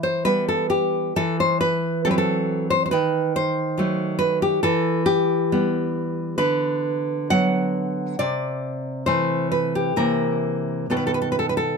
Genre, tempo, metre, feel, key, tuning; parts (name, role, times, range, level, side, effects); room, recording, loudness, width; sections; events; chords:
romantic piece for solo classical guitar; 68 BPM; 2/4; uneven beats, rubato; E minor; A4 = 443 Hz
nylon-string guitar; solo; 0.0-11.8 s; B2 to F#5; -20 LUFS; equal
light reverb; close, detailed microphones; -20 LUFS; side -5 dB against mid
0.0-11.8 A section
0.0 Em; 1.2 Am69/E; 2.9 D#dim7; 4.6 Em; 6.4 Bm/D; 8.2 Am/C; 10.0 C7; 10.9 B